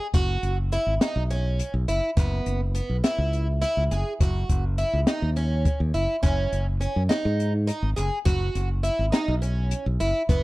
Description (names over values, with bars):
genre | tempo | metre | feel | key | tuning
progressive instrumental, band music in an uneven meter | 207 BPM (eighths) | 7/8 | straight | unclear | A4 = 440 Hz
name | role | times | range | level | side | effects
picked plugged-in twelve-string acoustic guitar | arpeggios | 0.0-10.4 s | B3 to G#4 | -28 LUFS | right 1 dB | none
modern bright fingered electric bass | bass | 0.1-10.4 s | F#1 to G#2 | -24 LUFS | equal | none
open jazz drum kit | drums | 0.1-10.4 s | hi-hat, kick drum, snare drum | -25 LUFS | equal | none
room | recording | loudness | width
small room ambience | dry, close 1970s-style studio recording | -22 LUFS | side -20 dB against mid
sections
0.0-10.4 A section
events
none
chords
0.1 C#m/F#; 2.2 Esus2/F#; 4.2 F#5; 6.2 F#sus2; 8.3 Esus2/F#